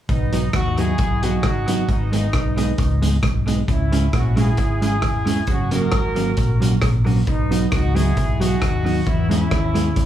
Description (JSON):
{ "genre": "ska", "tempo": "134 BPM", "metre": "4/4", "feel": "swing 54% on 8ths", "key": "B major", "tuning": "A4 = 440 Hz", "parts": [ { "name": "warm horn section", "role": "melody", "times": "0.1-10.1 s", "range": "B3 to A#4", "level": "-25 LUFS", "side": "equal", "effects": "dub echo, plate reverb" }, { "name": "hollow-body short-scale fingered electric bass", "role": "bass", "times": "0.1-10.1 s", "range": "E1 to E2", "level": "-21 LUFS", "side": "left 1 dB", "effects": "none" }, { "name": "vintage drum kit", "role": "drums", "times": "0.1-10.1 s", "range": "hi-hat, kick drum, rim click", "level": "-22 LUFS", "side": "equal", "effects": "none" }, { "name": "mellow electric guitar", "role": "accompaniment", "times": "0.3-10.0 s", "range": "F#3 to G#4", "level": "-22 LUFS", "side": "right 3 dB", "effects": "none" } ], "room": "light reverb", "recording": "small room reverb", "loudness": "-17 LUFS", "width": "side -11 dB against mid", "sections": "0.1-10.1 A section", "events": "none", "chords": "0.1 B; 1.9 G#m; 3.7 C#m; 5.5 F#; 7.3 B; 9.1 E" }